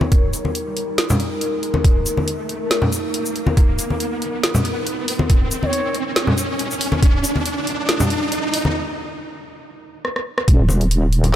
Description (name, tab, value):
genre	deep dubstep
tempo	139 BPM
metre	4/4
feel	half-time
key	unclear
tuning	A4 = 441 Hz
part	deep dark ambient pad	sustained chords	0.0-11.4 s	Eb4 to Bb4	-27 LUFS	left 2 dB	chorus, built-in reverb
part	congas	percussion	0.0-11.3 s	none	-22 LUFS	left 1 dB	none
part	riser	sound effects	0.0-8.8 s	none	-25 LUFS	right 1 dB	none
part	deep house drum kit	drums	0.1-11.3 s	hi-hat, rim click, shaker, snare drum	-23 LUFS	equal	none
part	electronic kick drum	drums	0.1-7.1, 10.5-10.6 s	none	-14 LUFS	equal	none
part	mellow shakuhachi	melody	5.6-5.9 s	Db5 to Eb5	-30 LUFS	left 1 dB	dub echo
part	deep soft wobble bass	bass	10.5-11.4 s	Eb1	-15 LUFS	equal	chorus
room	light reverb, digital ambience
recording	none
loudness	-17 LUFS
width	side -11 dB against mid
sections	0.0-10.5 A section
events	build-up 0.0-10.5; riser 0.0-8.8; break 8.8-10.5; drum fill 10.0-10.5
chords	0.0 Eb5